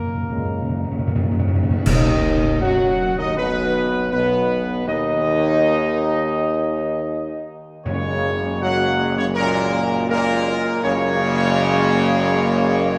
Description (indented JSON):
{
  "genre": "classical, ceremonial fanfare",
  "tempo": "80 BPM",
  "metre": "4/4",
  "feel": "straight",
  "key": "B major",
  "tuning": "A4 = 440 Hz",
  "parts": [
    { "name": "dark trumpet section", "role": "melody", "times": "0.0-13.0 s", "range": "A#4 to F#5", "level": "-27 LUFS", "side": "equal", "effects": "none" },
    { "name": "warm French horn section", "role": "sustained chords", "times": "0.0-13.0 s", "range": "G#3 to F#4", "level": "-26 LUFS", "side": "equal", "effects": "none" },
    { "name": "timpani", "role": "percussion", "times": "0.0-3.0, 7.9-8.9 s", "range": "F#2 to B2", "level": "-25 LUFS", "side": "equal", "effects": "none" },
    { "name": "mellow trombone section", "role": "sustained chords", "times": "0.3-13.0 s", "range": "A#2 to G#3", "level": "-27 LUFS", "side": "equal", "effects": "none" },
    { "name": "clear tuba", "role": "bass", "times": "0.3-13.0 s", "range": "F#1 to F#2", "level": "-25 LUFS", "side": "equal", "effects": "none" },
    { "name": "clash cymbals and concert bass drum", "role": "percussion", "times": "1.9-3.3 s", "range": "none", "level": "-30 LUFS", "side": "equal", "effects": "none" }
  ],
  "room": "wet church reverb, RT60 3.6 s",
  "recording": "none",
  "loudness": "-20 LUFS",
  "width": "mono",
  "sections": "0.0-1.9 A section; 1.9-13.0 B section",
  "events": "timpani fill 0.0-1.9; band accent 1.9-2.6",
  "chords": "0.0 F#add9; 1.9 B; 7.9 F#add9"
}